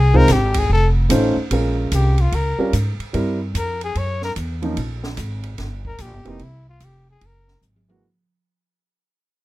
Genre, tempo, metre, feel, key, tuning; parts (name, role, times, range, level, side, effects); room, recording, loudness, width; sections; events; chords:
jazz, small-group swing and bop; 147 BPM; 4/4; swing 65% on 8ths; F minor; A4 = 439 Hz
clear trumpet; melody; 0.0-7.6 s; Eb4 to Db5; -22 LUFS; left 4 dB
upright bass; bass; 0.0-8.0 s; F1 to Ab2; -19 LUFS; equal
warm grand piano; accompaniment; 0.1-8.0 s; E3 to C5; -20 LUFS; right 1 dB
open jazz drum kit; drums; 0.1-8.0 s; hi-hat, kick drum, ride cymbal, snare drum, toms; -28 LUFS; right 1 dB
little or no reverb; rough home demo mix; -17 LUFS; side -17 dB against mid
0.0-1.5 A section; 1.5-8.0 B section
fade-out 1.5-8.0; drum fill 7.6-8.0
0.0 Fm7; 0.7 F7b13; 1.5 Bbm7; 2.3 Gm7b5; 3.1 C7; 4.0 Gb7; 4.8 Absus2; 5.6 Fsus4; 6.4 Fmaj7(no3); 7.2 Gb9